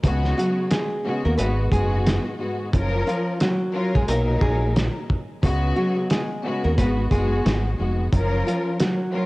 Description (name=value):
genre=hip hop, boom-bap hip-hop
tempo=89 BPM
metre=4/4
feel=swing 60% on 16ths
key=F# major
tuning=A4 = 440 Hz
part: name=warm studio string section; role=accompaniment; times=0.0-9.3 s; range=G#2 to A#4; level=-26 LUFS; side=left 1 dB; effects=high-pass filter, low-pass filter, cassette tape
part: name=deep dub fingered electric bass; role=bass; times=0.0-8.4 s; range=E#1 to D#2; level=-22 LUFS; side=equal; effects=none
part: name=cloth-damped thuddy drum kit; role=drums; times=0.0-9.0 s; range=hi-hat, kick drum, snare drum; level=-24 LUFS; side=equal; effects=cassette tape
part: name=nylon-string guitar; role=melody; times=0.4-9.3 s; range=E#3 to B4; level=-25 LUFS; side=equal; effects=high-pass filter, low-pass filter, cassette tape
room=small room ambience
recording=home recording on cassette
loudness=-20 LUFS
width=side -21 dB against mid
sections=0.0-9.3 A section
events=none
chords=0.0 C#7sus4; 1.4 G#m7; 2.7 F#maj7; 4.1 Bmaj7; 5.4 C#7sus4; 6.8 G#m7; 8.1 F#maj7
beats=| 0.03 0.71 1.38 2.06 | 2.73 3.40 4.08 4.75 | 5.43 6.10 6.78 7.45 | 8.12 8.80